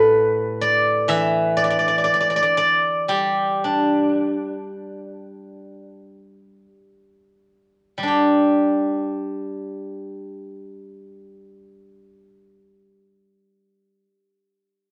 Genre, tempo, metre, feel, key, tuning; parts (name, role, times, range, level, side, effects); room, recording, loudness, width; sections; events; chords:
chinese traditional, Chinese solo plucked strings; 40-66 BPM; 4/4; rubato; G gong mode; A4 = 440 Hz
steel-string zither; solo; 0.0-14.0 s; A2 to E5; -20 LUFS; equal
moderate studio reverb, RT60 0.5 s; -20 LUFS; mono
0.0-8.1 A section; 8.1-13.8 B section
slowing down 0.0-8.1